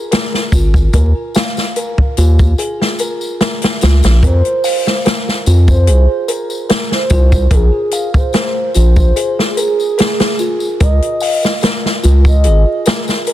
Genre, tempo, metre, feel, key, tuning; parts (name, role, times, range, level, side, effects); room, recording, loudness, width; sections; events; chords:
trip hop; 73 BPM; 4/4; straight; Bb minor; A4 = 440 Hz
music box; arpeggios; 0.1-13.3 s; F4 to F5; -21 LUFS; equal; tape echo
open jazz drum kit; drums; 0.1-13.3 s; hi-hat, kick drum, snare drum; -14 LUFS; equal
tambourine; percussion; 0.1-13.3 s; -30 LUFS; left 4 dB
round analog bass; bass; 0.5-12.6 s; Ab1 to F2; -9 LUFS; equal
pure breathy sine lead; melody; 4.2-12.8 s; Ab4 to Eb5; -18 LUFS; right 1 dB; wide subtle chorus, tape echo
studio ambience; dense, heavily limited modern master, vinyl crackle; -10 LUFS; side -13 dB against mid
0.0-13.3 A section
0.0 Db (rootless); 0.9 Ebsus2; 4.2 Fsus4; 7.5 Bb5; 10.8 Db